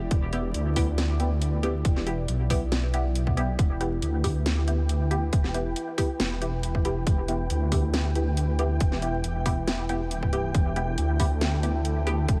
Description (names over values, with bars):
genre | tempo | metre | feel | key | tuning
deep dubstep | 138 BPM | 4/4 | half-time | E minor | A4 = 443 Hz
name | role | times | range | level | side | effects
dark analog pad | sustained chords | 0.0-12.4 s | E4 to D5 | -37 LUFS | equal | chorus
dark detuned saw bass | bass | 0.0-12.4 s | E1 to D2 | -29 LUFS | equal | none
electronic kick drum | drums | 0.1-12.4 s | none | -27 LUFS | equal | none
garage drum kit | drums | 0.1-12.4 s | hi-hat, snare drum | -34 LUFS | equal | none
filtered dub chord stab | stabs | 0.3-12.2 s | B3 to G4 | -35 LUFS | equal | phaser, lush chorus, dub echo
flickering grainy texture | texture | 4.2-12.4 s | G5 | -41 LUFS | equal | built-in reverb
room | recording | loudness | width
little or no reverb | vinyl crackle | -26 LUFS | mono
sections
0.0-12.4 A section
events
none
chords
0.0 Em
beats
| 0.11 0.55 0.98 1.42 | 1.85 2.28 2.72 3.15 | 3.59 4.02 4.46 4.89 | 5.33 5.76 6.20 6.63 | 7.07 7.50 7.94 8.37 | 8.81 9.24 9.68 10.11 | 10.54 10.98 11.41 11.85 | 12.28